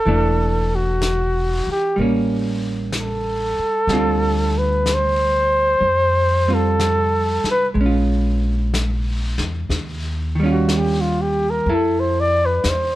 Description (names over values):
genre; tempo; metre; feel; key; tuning
jazz ballad; 62 BPM; 4/4; swing 68% on 8ths; unclear; A4 = 445 Hz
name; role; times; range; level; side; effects
mellow flugelhorn; melody; 0.0-13.0 s; F4 to D5; -19 LUFS; equal; none
vintage hollow-body jazz guitar; accompaniment; 0.0-13.0 s; D3 to A4; -22 LUFS; right 2 dB; none
upright bass; bass; 0.1-13.0 s; E1 to F2; -22 LUFS; equal; none
vintage brush drum kit; drums; 0.1-13.0 s; brushed snare drum, hi-hat, snare drum; -30 LUFS; left 2 dB; none
room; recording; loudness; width
little or no reverb; dark, warm production; -17 LUFS; side -15 dB against mid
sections
0.0-13.0 A section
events
flugelhorn solo 0.0-13.0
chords
0.1 E9sus4; 2.0 A7b9; 3.9 Dm7; 7.8 Bbm7; 9.7 Eb9; 11.7 Fmaj7